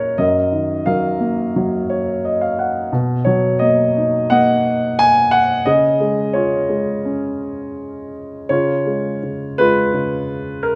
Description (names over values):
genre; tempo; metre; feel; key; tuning
classical, lyrical solo piano; 86 BPM; 4/4; uneven beats, rubato; unclear; A4 = 441 Hz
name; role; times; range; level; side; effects
dark grand piano; solo; 0.0-10.8 s; F#2 to G#5; -18 LUFS; equal; none
room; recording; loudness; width
moderate recital hall reverb, RT60 1.6 s; none; -17 LUFS; mono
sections
0.0-10.8 A section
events
grand piano fill 1.6-2.9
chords
0.2 D#madd9/F#; 2.9 Bmaj7; 5.7 C#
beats
| 0.18 0.87 1.56 2.25 | 2.93 3.61 4.31 4.99 | 5.66 6.34 7.05 7.78 | 8.51 9.23 9.95 10.66